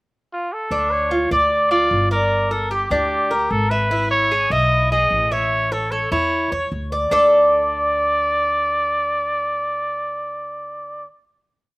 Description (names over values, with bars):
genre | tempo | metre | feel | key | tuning
latin, Cuban son and guajira | 150 BPM | 4/4 | straight | D harmonic minor | A4 = 439 Hz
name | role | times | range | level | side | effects
warm trumpet | melody | 0.3-11.1 s | F4 to Eb5 | -19 LUFS | equal | none
Cuban tres | arpeggios | 0.7-11.1 s | D4 to E5 | -20 LUFS | equal | none
upright bass | bass | 0.7-11.0 s | G1 to E2 | -26 LUFS | equal | none
room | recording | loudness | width
little or no reverb | recorded outdoors, with no room sound | -16 LUFS | side -25 dB against mid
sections
0.0-0.7 pickup bar; 0.7-7.1 verse; 7.1-10.3 final chord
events
none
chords
0.0 N.C.; 0.7 Dm; 2.3 Gm; 3.9 E/G#; 5.5 A; 7.1 D5